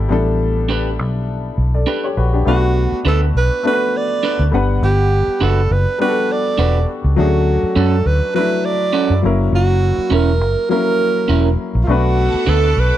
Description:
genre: lush 1970s-style soul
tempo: 102 BPM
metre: 4/4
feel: swing 54% on 16ths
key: unclear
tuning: A4 = 441 Hz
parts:
  - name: warm baby grand piano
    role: accompaniment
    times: 0.0-13.0 s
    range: F#3 to F#5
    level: -20 LUFS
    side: left 4 dB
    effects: none
  - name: vintage muted fingered electric bass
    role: bass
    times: 0.0-12.9 s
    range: E1 to F#2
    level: -16 LUFS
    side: equal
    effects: none
  - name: electric guitar through a small old amp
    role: riff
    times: 0.7-12.7 s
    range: C#4 to B4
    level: -20 LUFS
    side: right 5 dB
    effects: none
  - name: breathy alto saxophone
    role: melody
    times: 2.5-13.0 s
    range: F4 to D5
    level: -19 LUFS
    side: right 4 dB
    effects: none
  - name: string machine, full ensemble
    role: sustained chords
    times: 11.9-13.0 s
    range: A4 to D6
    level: -24 LUFS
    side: equal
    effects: ensemble chorus
room: small room ambience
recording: dry, close 1970s-style studio recording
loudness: -14 LUFS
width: side -12 dB against mid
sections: 0.0-2.5 A section; 2.5-13.0 B section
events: none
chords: 0.0 A9sus4; 2.5 Bm7; 4.5 Gmaj7; 7.2 Dmaj7; 9.2 F#7; 11.9 Bm7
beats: | 0.10 0.70 1.29 1.88 | 2.47 3.06 3.64 4.23 | 4.82 5.41 6.00 6.59 | 7.18 7.76 8.35 8.94 | 9.53 10.12 10.71 11.29 | 11.88 12.47

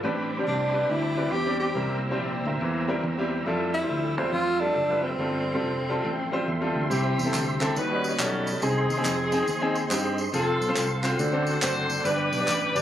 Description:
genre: uptempo gospel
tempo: 140 BPM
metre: 4/4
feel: swing 64% on 8ths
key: C major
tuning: A4 = 442 Hz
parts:
  - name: clear baby grand piano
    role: accompaniment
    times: 0.0-12.8 s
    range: G2 to C6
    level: -28 LUFS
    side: left 1 dB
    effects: none
  - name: bright studio string section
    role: sustained chords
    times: 0.0-6.9 s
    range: E3 to E4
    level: -37 LUFS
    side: right 2 dB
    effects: none
  - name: tonewheel organ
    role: sustained chords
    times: 0.0-12.8 s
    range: G3 to E6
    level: -33 LUFS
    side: right 3 dB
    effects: slow rotary speaker, chorus vibrato
  - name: fingered electric bass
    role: bass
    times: 0.0-12.8 s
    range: F1 to G2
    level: -30 LUFS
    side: equal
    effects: none
  - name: breathy tenor saxophone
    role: melody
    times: 0.5-6.5 s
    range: C4 to G4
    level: -27 LUFS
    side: equal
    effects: none
  - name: warm saxophone section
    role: melody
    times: 6.9-12.8 s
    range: C4 to C5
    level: -28 LUFS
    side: left 1 dB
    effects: none
  - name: tambourine and handclaps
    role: percussion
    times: 6.9-12.8 s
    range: none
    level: -32 LUFS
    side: right 1 dB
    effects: none
room: light reverb, small room ambience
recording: recorded on a phone in the room, club reverb, compression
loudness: -23 LUFS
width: side -11 dB against mid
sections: 0.0-6.9 A section; 6.9-12.8 B section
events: grand piano fill 5.6-6.9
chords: 0.0 Am11; 1.8 C7; 2.6 C7/E; 3.5 Fmaj9; 5.2 G9sus4; 6.9 C; 7.8 Eb7alt; 8.6 Ab/C; 10.3 F; 11.2 D7; 12.0 G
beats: | 0.03 0.46 0.89 1.32 | 1.75 2.18 2.61 3.04 | 3.47 3.90 4.33 4.76 | 5.19 5.62 6.05 6.48 | 6.91 7.34 7.76 8.19 | 8.62 9.05 9.48 9.91 | 10.33 10.76 11.19 11.62 | 12.05 12.48

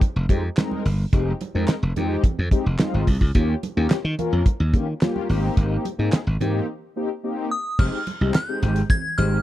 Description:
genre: early-eighties boogie funk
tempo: 108 BPM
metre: 4/4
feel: straight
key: F minor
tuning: A4 = 440 Hz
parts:
  - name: damped 70s drum kit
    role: drums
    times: 0.0-9.3 s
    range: crash cymbal, handclaps, hi-hat, kick drum, snare drum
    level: -19 LUFS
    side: equal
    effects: none
  - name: congas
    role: percussion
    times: 0.0-9.3 s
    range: none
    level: -32 LUFS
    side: right 5 dB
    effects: none
  - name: glassy slap bass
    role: bass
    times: 0.2-9.4 s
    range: F1 to Eb3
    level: -22 LUFS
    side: equal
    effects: none
  - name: mellow synth brass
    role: accompaniment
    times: 0.3-9.4 s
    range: Ab3 to Bb4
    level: -26 LUFS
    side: left 3 dB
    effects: chorus
  - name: delicate synth tine bell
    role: melody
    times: 7.5-9.4 s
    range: Eb6 to Ab6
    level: -26 LUFS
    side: left 1 dB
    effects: chorus, slapback echo
room: studio reverb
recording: dry, close 1970s-style studio recording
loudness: -20 LUFS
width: side -14 dB against mid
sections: 0.0-7.8 A section; 7.8-9.4 B section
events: break 6.7-7.8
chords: 0.0 Fm9; 3.3 Eb7; 5.3 Abmaj9; 7.8 Fm9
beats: 0.01 0.57 | 1.13 1.68 2.24 2.79 | 3.35 3.90 4.46 5.01 | 5.57 6.13 6.68 7.24 | 7.79 8.35 8.90

